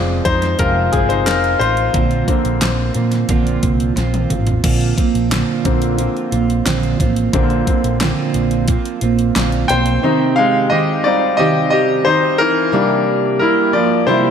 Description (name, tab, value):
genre	piano-driven pop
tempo	89 BPM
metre	4/4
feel	straight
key	unclear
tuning	A4 = 440 Hz
part	bright concert grand piano	accompaniment	0.0-14.3 s	D3 to G5	-16 LUFS	left 4 dB	none
part	fingerpicked steel-string acoustic guitar	riff	0.0-14.3 s	F2 to G4	-18 LUFS	right 7 dB	wide subtle chorus
part	picked electric bass	bass	0.0-10.0 s	F1 to Bb2	-19 LUFS	equal	none
part	pop drum kit	drums	0.3-10.0 s	crash cymbal, handclaps, hi-hat, kick drum, snare drum, toms	-20 LUFS	equal	overdrive
room	moderate lush hall reverb, RT60 2.1 s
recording	dreamy mix soaked in reverb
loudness	-13 LUFS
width	side -8 dB against mid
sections	0.0-4.6 A section; 4.6-10.0 B section; 10.0-14.3 C section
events	grand piano solo 0.0-4.6, 4.6-10.0, 10.0-14.3; drum fill 4.0-4.6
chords	0.0 Fm; 1.9 Bbadd9; 10.0 Cm; 12.7 C7